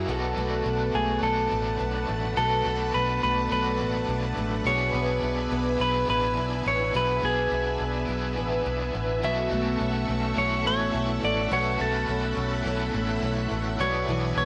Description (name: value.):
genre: dream pop.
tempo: 105 BPM.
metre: 4/4.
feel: straight.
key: unclear.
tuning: A4 = 442 Hz.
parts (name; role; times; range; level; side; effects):
raw garage guitar; accompaniment; 0.0-14.4 s; B2 to G#4; -37 LUFS; equal; overdrive, tremolo, lush chorus.
string machine, violins; sustained chords; 0.0-14.4 s; A4 to C#6; -36 LUFS; equal; ensemble chorus.
fingerpicked twelve-string acoustic guitar; arpeggios; 0.0-14.4 s; B2 to A4; -31 LUFS; equal; subtle chorus, tape echo.
vintage muted fingered electric bass; bass; 0.0-14.4 s; A1 to B1; -33 LUFS; equal; none.
clean electric guitar; melody; 1.0-14.4 s; G#4 to E5; -30 LUFS; equal; tape echo.
room: light reverb.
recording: dry, gritty hardware recording, nothing above 10.7 kHz.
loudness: -26 LUFS.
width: mono.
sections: 0.1-14.4 A section.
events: none.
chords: 0.1 D6; 4.7 E7; 9.2 F#m7; 13.8 E7/B.